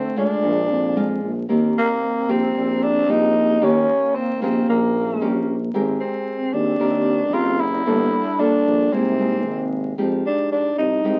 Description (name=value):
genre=bossa nova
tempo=113 BPM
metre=4/4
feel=straight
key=Eb major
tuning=A4 = 440 Hz
part: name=growling tenor saxophone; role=melody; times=0.0-11.2 s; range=Bb3 to F4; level=-23 LUFS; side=equal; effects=none
part: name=mellow hollow wooden-headed alto flute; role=second line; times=0.0-11.2 s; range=A3 to D#4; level=-31 LUFS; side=equal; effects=none
part: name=nylon-string guitar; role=accompaniment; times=0.0-11.2 s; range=Bb2 to Bb4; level=-26 LUFS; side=equal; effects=none
part: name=breathy tuba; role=bass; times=0.0-11.2 s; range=Gb1 to F2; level=-26 LUFS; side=equal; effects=none
room=moderate small room reverb, RT60 0.5 s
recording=very old 78 rpm record, vinyl crackle, nothing above 7.8 kHz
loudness=-20 LUFS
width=mono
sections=0.0-1.5 A section; 1.5-11.2 B section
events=none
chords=0.4 Bb7; 1.5 Eb6; 3.6 Eb7; 5.7 Abmaj9; 7.9 Gm9; 8.9 C7alt; 10.0 Fm9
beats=0.44 0.97 | 1.50 2.03 2.56 3.08 | 3.62 4.14 4.67 5.21 | 5.74 6.26 6.80 7.33 | 7.86 8.39 8.92 9.45 | 9.98 10.51 11.04